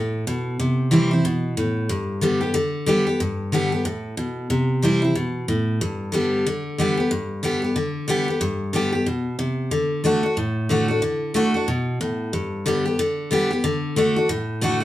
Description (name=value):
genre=rock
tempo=184 BPM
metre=4/4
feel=swing 60% on 8ths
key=G major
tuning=A4 = 440 Hz
part: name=picked steel-string acoustic guitar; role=solo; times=0.0-14.8 s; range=G2 to G4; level=-20 LUFS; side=equal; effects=none
room=moderate studio reverb, RT60 0.6 s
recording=band playing live in one room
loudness=-20 LUFS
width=side -14 dB against mid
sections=0.0-14.8 A section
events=none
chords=0.0 N.C.; 0.6 C; 1.9 G; 4.5 C; 5.8 G; 9.7 D; 12.3 G; 13.6 D